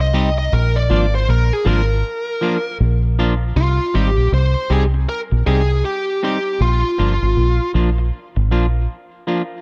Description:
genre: roots reggae.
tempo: 79 BPM.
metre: 4/4.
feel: swing 62% on 16ths.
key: unclear.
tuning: A4 = 440 Hz.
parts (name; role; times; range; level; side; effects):
bluesy overdriven lead guitar; melody; 0.0-7.7 s; F4 to Eb5; -24 LUFS; equal; distortion.
deep dub fingered electric bass; bass; 0.0-8.9 s; G1 to C2; -18 LUFS; equal; none.
semi-hollow electric guitar; accompaniment; 0.1-9.4 s; F3 to G4; -26 LUFS; equal; none.
room: light reverb, digital ambience.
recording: cassette tape.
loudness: -18 LUFS.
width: mono.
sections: 0.0-3.6 A section; 3.6-9.6 B section.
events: lead electric guitar solo 0.0-3.6.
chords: 0.0 Cm; 0.5 Bb; 3.6 Cm; 6.6 Bb.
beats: | 0.52 1.28 2.04 2.80 | 3.56 4.32 5.08 5.84 | 6.60 7.36 8.12 8.88.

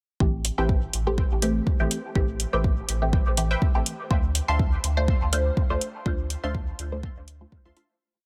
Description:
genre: dub techno.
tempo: 123 BPM.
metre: 4/4.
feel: swing 54% on 16ths.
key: A minor.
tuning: A4 = 441 Hz.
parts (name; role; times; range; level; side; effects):
filtered dub chord stab; stabs; 0.2-8.0 s; E3 to C5; -31 LUFS; equal; phaser, sidechain pumping, dub echo.
warm sub bass; bass; 0.2-7.7 s; A1 to D2; -30 LUFS; equal; tube saturation, sidechain pumping.
electronic kick drum; drums; 0.2-7.6 s; none; -26 LUFS; equal; none.
electronic hi-hat; drums; 0.4-7.9 s; none; -31 LUFS; equal; none.
filtered dub chord stab; riff; 0.6-8.0 s; B4 to C6; -38 LUFS; equal; chorus, sidechain pumping, dub echo.
room: light reverb, digital ambience.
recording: none.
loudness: -25 LUFS.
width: mono.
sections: 0.2-8.0 groove.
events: fade-out 5.4-8.0.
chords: 0.2 Am7; 4.1 Dm7.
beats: | 0.20 0.69 1.18 1.67 | 2.16 2.64 3.13 3.62 | 4.11 4.59 5.08 5.57 | 6.06 6.55 7.03 7.52.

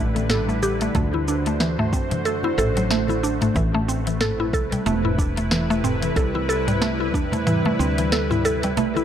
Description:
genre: organic downtempo.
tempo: 92 BPM.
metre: 4/4.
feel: swing 57% on 16ths.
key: unclear.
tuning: A4 = 439 Hz.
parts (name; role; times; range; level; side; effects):
bowed-like drone; sustained chords; 0.0-9.0 s; C3 to C5; -26 LUFS; right 1 dB; built-in reverb, sidechain pumping.
mallet-like synth pluck; arpeggios; 0.0-9.0 s; E3 to A4; -23 LUFS; equal; chorus, tape echo.
woody fretless electric bass; bass; 0.0-9.0 s; E1 to F#2; -26 LUFS; equal; ensemble chorus.
afro-pop drum kit; drums; 0.2-9.0 s; hi-hat, shaker, snare drum, toms; -26 LUFS; equal; none.
congas; percussion; 0.2-9.0 s; none; -32 LUFS; left 2 dB; none.
electronic kick drum; drums; 0.9-7.3 s; none; -24 LUFS; equal; none.
room: little or no reverb.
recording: dry, gritty hardware recording.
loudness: -19 LUFS.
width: side -9 dB against mid.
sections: 0.0-9.0 A section.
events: kick drops out 8.8.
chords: 0.0 G6; 0.9 D7; 3.6 Amadd9; 6.2 Cmaj7.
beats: 0.30 | 0.95 1.60 2.25 2.90 | 3.56 4.21 4.86 5.51 | 6.17 6.82 7.47 8.12 | 8.78.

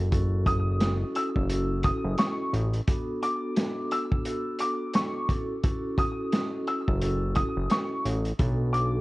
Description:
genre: hip hop, boom-bap hip-hop.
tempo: 87 BPM.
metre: 4/4.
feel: swing 58% on 16ths.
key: unclear.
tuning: A4 = 440 Hz.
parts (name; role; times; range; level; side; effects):
fat analog bass; bass; 0.0-9.0 s; F#1 to B1; -26 LUFS; equal; none.
vibraphone with soft mallets; accompaniment; 0.1-9.0 s; B3 to A4; -32 LUFS; equal; high-pass filter, low-pass filter.
vintage drum kit; drums; 0.1-8.9 s; hi-hat, kick drum, snare drum; -28 LUFS; equal; vintage 12-bit sampler grit.
warm upright piano; melody; 0.5-9.0 s; C#6 to E6; -31 LUFS; equal; high-pass filter, low-pass filter, slapback echo.
room: studio reverb.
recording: worn, warbling old tape, cassette tape, warbly pitch drift.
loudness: -25 LUFS.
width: side -21 dB against mid.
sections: 0.0-9.0 A section.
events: break 2.9-5.6.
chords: 0.0 F#m7; 2.9 Bm7; 5.3 F#m7; 8.4 Bm7.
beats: | 0.12 0.81 1.50 2.19 | 2.88 3.57 4.26 4.95 | 5.64 6.33 7.02 7.71 | 8.39.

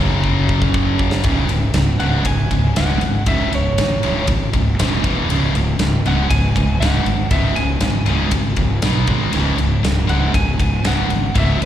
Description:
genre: hard rock.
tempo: 119 BPM.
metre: 4/4.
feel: straight.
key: C# minor.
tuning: A4 = 440 Hz.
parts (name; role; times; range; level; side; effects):
tonewheel organ; sustained chords; 0.0-1.2 s; F#3 to G#4; -32 LUFS; equal; slow rotary speaker.
crunchy overdriven guitar; riff; 0.0-11.7 s; C#2 to B3; -22 LUFS; right 7 dB; slapback echo.
heavy high-gain guitar; riff; 0.0-11.7 s; C#2 to B3; -22 LUFS; left 7 dB; distortion, slapback echo.
fuzz fingered electric bass; bass; 0.0-11.7 s; C#1 to B1; -19 LUFS; equal; overdrive.
huge arena drum kit; drums; 0.2-11.7 s; kick drum, ride cymbal, snare drum; -21 LUFS; equal; none.
lightly driven lead guitar; melody; 2.0-11.6 s; C#5 to G#5; -24 LUFS; equal; slapback echo, analog delay.
room: little or no reverb.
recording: live gig heard through the venue's PA, recital hall reverb.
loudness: -15 LUFS.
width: side -11 dB against mid.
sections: 0.0-1.3 A section; 1.3-11.7 B section.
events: drum fill 0.2-1.3.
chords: 0.0 F#5; 1.3 C#5; 5.0 E5; 5.3 C#5; 8.8 B5; 9.1 G#5; 9.3 C#5.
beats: 0.24 0.75 | 1.25 1.76 2.26 2.77 | 3.27 3.78 4.28 4.79 | 5.29 5.80 6.30 6.81 | 7.31 7.82 8.32 8.83 | 9.33 9.84 10.34 10.85 | 11.35.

